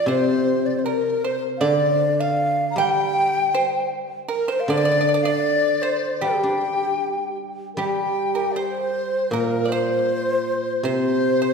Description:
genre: chinese traditional, Chinese chamber ensemble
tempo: 78 BPM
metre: 2/4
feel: straight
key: G yu mode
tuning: A4 = 440 Hz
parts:
  - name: breathy xiao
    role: melody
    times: 0.0-11.5 s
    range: G4 to G5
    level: -24 LUFS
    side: equal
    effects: none
  - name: mellow hollow dizi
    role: second line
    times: 0.0-11.5 s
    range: Bb4 to Bb5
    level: -25 LUFS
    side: left 2 dB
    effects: none
  - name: pipa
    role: second line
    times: 0.0-11.5 s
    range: G4 to G5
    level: -27 LUFS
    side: right 4 dB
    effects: none
  - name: guzheng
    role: accompaniment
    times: 0.0-11.5 s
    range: Bb2 to D4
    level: -24 LUFS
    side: left 1 dB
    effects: none
room: wet concert hall reverb, RT60 1.9 s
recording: heard from further back in the room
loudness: -19 LUFS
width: side -5 dB against mid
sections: 0.0-7.8 A section; 7.8-11.5 B section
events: none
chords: none

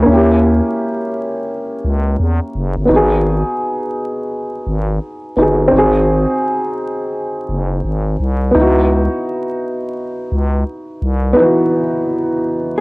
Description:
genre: hip hop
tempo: 85 BPM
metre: 4/4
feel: swing 62% on 16ths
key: C# minor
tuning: A4 = 443 Hz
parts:
  - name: dark upright piano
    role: accompaniment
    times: 0.0-12.8 s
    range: E3 to G#4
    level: -15 LUFS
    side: equal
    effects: cassette tape, low-pass filter
  - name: growling FM bass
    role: bass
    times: 0.0-11.3 s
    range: F#1 to E2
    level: -15 LUFS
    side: equal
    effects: none
room: moderate spring reverb, RT60 2.3 s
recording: dry, gritty hardware recording, vinyl crackle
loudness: -14 LUFS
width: side -23 dB against mid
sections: 0.0-12.8 A section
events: none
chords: 0.1 D#7b9; 2.9 G#m7; 5.7 G#7; 8.5 C#m11

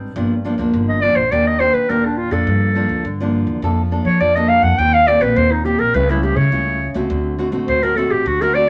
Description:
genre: samba and choro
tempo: 104 BPM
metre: 4/4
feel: straight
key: G minor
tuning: A4 = 440 Hz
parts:
  - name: nylon-string guitar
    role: accompaniment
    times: 0.0-8.7 s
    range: G2 to A4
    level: -22 LUFS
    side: equal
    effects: none
  - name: upright bass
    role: bass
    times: 0.0-8.6 s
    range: G1 to F3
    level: -23 LUFS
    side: equal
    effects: none
  - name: clear clarinet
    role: melody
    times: 0.9-8.7 s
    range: D4 to G5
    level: -18 LUFS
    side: equal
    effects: none
room: moderate studio reverb, RT60 0.8 s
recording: none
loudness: -17 LUFS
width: mono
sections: 0.2-8.7 A section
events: clarinet solo 0.2-8.7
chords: 0.2 Gm7; 1.3 Ebmaj7; 2.5 Gm7; 3.6 Bbmaj7/F; 4.8 Eb6; 5.9 A7/C#; 7.1 D7

